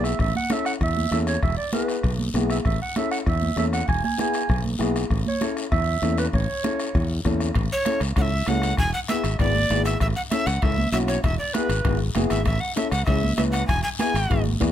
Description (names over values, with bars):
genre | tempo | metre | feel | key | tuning
latin, cumbia | 196 BPM | 4/4 | straight | A major | A4 = 438 Hz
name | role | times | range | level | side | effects
breathy clarinet | second line | 0.0-7.2 s | B4 to G#5 | -27 LUFS | right 5 dB | none
dark upright piano | accompaniment | 0.0-14.7 s | B3 to D5 | -28 LUFS | left 6 dB | none
modern bright fingered electric bass | bass | 0.0-14.7 s | E1 to E2 | -24 LUFS | equal | none
bombo | percussion | 0.0-14.7 s | none | -28 LUFS | left 1 dB | none
guiro | percussion | 0.0-14.7 s | none | -36 LUFS | left 6 dB | none
congas | percussion | 0.2-14.7 s | none | -29 LUFS | right 4 dB | none
timbales | percussion | 7.6-14.7 s | none | -37 LUFS | right 10 dB | none
breathy bright alto recorder | melody | 7.7-14.4 s | B4 to G#5 | -26 LUFS | equal | none
room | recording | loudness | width
light reverb | close, detailed microphones | -20 LUFS | side -10 dB against mid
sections
0.0-7.6 A section; 7.6-14.7 B section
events
clarinet solo 0.0-7.6; upright piano fill 14.5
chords
0.2 A; 1.4 E; 2.7 A; 3.9 E; 5.1 A; 8.8 E7; 10.0 A; 11.2 E; 12.5 A; 13.7 E